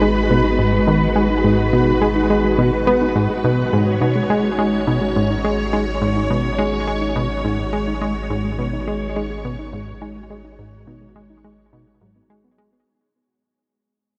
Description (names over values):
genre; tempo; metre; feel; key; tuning
ambient, sequencer-driven space music; 105 BPM; 4/4; straight; G# minor; A4 = 445 Hz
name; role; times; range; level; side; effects
string machine, full ensemble; sustained chords; 0.0-12.9 s; G#3 to C#5; -23 LUFS; equal; ensemble chorus
soft round pluck; arpeggios; 0.0-12.8 s; F#3 to D#4; -28 LUFS; equal; chorus, tape echo
plucky analog bass; riff; 0.0-12.7 s; G#2 to B3; -22 LUFS; equal; tape echo
round analog bass; bass; 0.0-12.8 s; G#1; -30 LUFS; equal; none
room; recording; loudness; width
wet huge ambient reverb, RT60 7.7 s; none; -18 LUFS; mono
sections
0.0-12.9 A section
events
filter sweep on synth arpeggio sound 0.0-12.9; fade-out 3.7-12.9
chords
0.0 G#m7